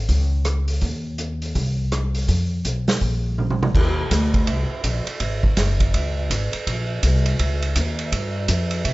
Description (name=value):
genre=jazz, big band swing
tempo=164 BPM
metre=4/4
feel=swing 63% on 8ths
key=unclear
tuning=A4 = 442 Hz
part: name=upright bass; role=bass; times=0.0-8.9 s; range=Gb1 to C3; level=-21 LUFS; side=equal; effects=none
part: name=vintage drum kit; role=drums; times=0.1-8.9 s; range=crash cymbal, hi-hat, kick drum, ride cymbal, rim click, snare drum, toms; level=-23 LUFS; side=right 1 dB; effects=none
room=little or no reverb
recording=nothing above 7.7 kHz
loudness=-19 LUFS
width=side -20 dB against mid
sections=0.0-3.7 A section; 3.7-8.9 A section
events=drum fill 3.4-3.7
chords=none